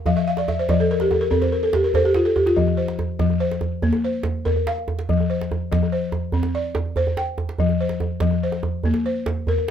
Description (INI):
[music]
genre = west african traditional, West African string and xylophone music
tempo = 96 BPM (dotted quarters)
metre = 12/8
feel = straight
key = F major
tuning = A4 = 439 Hz
[part]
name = balafon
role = arpeggios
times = 0.0-9.7 s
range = F3 to G5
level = -21 LUFS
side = left 3 dB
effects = none
[part]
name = djembe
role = percussion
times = 0.1-9.7 s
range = none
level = -23 LUFS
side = right 3 dB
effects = none
[sound]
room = light reverb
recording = close, detailed microphones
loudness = -19 LUFS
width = side -9 dB against mid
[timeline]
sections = 0.0-9.7 A section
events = balafon fill 0.1-2.6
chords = 0.1 N.C.; 2.6 F5; 3.8 Bb5; 5.1 F5; 6.3 C5; 7.6 F5; 8.8 Bb5